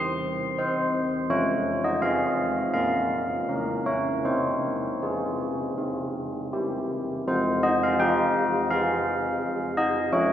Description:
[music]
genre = classical, tune for church bells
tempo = 82 BPM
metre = 4/4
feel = uneven beats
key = F minor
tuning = A4 = 440 Hz
[part]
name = old church bells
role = solo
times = 0.0-10.3 s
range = F3 to C6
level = -23 LUFS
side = equal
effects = none
[sound]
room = wet church reverb, RT60 4.0 s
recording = none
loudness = -23 LUFS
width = side -10 dB against mid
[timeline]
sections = 0.0-7.3 A section; 7.3-10.3 B section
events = none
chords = 0.0 C5; 1.3 Fm; 2.8 Bbm; 4.3 Fm/C; 5.8 C; 7.3 Fm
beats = 0.60 | 1.31 2.03 2.75 3.49 | 4.25 5.02 5.78 6.53 | 7.28 8.00 8.71 9.43 | 10.14

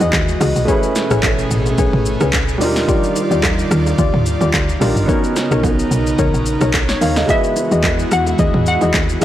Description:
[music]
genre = amapiano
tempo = 109 BPM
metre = 4/4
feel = swing 55% on 16ths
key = unclear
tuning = A4 = 436 Hz
[part]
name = warm concert grand piano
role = accompaniment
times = 0.0-9.2 s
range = G3 to F5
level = -22 LUFS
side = right 2 dB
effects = none
[part]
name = airy breathy pad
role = sustained chords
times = 0.0-9.2 s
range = B2 to D#5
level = -22 LUFS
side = equal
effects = chorus
[part]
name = deep mellow chord stab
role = stabs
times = 0.0-9.2 s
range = D#4 to D#5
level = -22 LUFS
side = left 6 dB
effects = chorus, tape echo
[part]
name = woody log drum bass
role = bass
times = 0.0-9.2 s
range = G1 to E2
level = -19 LUFS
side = equal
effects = none
[part]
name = deep house drum kit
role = drums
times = 0.0-9.2 s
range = handclaps, hi-hat, kick drum, rim click, shaker, snare drum, toms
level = -19 LUFS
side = equal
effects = overdrive
[part]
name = bongos and congas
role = percussion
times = 0.0-9.2 s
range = none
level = -26 LUFS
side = right 6 dB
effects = none
[part]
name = hollow square pluck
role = melody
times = 7.3-9.2 s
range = E5 to F#5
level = -20 LUFS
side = left 1 dB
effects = chorus, tape echo
[sound]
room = light reverb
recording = blown-out, overdriven recording, overdrive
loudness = -13 LUFS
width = side -12 dB against mid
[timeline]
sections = 0.0-9.2 A section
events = none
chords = 0.0 Emaj9; 0.7 Amaj9; 2.6 D#maj9; 5.1 Bmaj9; 7.3 Emaj9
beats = 0.13 | 0.68 1.23 1.78 2.33 | 2.88 3.44 3.99 4.54 | 5.09 5.64 6.19 6.74 | 7.29 7.84 8.39 8.94

